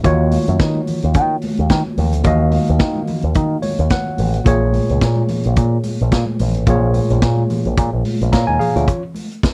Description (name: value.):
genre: disco.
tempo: 109 BPM.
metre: 4/4.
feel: swing 56% on 16ths.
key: unclear.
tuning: A4 = 440 Hz.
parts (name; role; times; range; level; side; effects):
tine electric piano; accompaniment; 0.0-9.0 s; Bb2 to Bb5; -21 LUFS; equal; none.
picked electric bass with an envelope filter; bass; 0.0-8.8 s; A1 to Eb3; -20 LUFS; equal; none.
vintage drum kit; drums; 0.0-9.5 s; hi-hat, kick drum, snare drum; -20 LUFS; equal; none.
congas; percussion; 0.0-9.5 s; none; -28 LUFS; equal; none.
room: little or no reverb.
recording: dry, close 1970s-style studio recording.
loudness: -17 LUFS.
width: mono.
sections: 0.0-8.9 A section.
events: tine electric piano fill 3.4-4.5.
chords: 0.0 Ebm7; 4.5 Bbm7; 8.9 N.C..